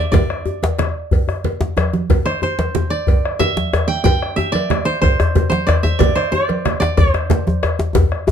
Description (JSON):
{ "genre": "west african traditional, West African drum ensemble", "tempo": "123 BPM (dotted quarters)", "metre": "12/8", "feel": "straight", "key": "C major pentatonic", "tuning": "A4 = 441 Hz", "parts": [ { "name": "koto", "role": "melody", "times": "0.0-8.3 s", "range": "C5 to G5", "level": "-20 LUFS", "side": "right 3 dB", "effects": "none" }, { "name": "bombo", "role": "percussion", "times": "0.1-8.3 s", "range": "none", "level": "-20 LUFS", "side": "equal", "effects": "none" }, { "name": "congas", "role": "percussion", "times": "0.1-8.3 s", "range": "none", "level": "-22 LUFS", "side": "right 6 dB", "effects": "none" }, { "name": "cowbell", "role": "percussion", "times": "0.1-8.1 s", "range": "none", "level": "-26 LUFS", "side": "left 2 dB", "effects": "none" }, { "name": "djembe", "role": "percussion", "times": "0.1-8.3 s", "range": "none", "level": "-21 LUFS", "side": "left 3 dB", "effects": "none" }, { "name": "djembe", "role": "percussion", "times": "0.1-8.3 s", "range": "none", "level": "-18 LUFS", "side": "left 2 dB", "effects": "none" } ], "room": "moderate studio reverb, RT60 0.5 s", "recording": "dark, warm production", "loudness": "-15 LUFS", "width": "side -8 dB against mid", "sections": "0.0-8.3 A section", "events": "drum fill 1.3-2.1, 8.0-8.3", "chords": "none" }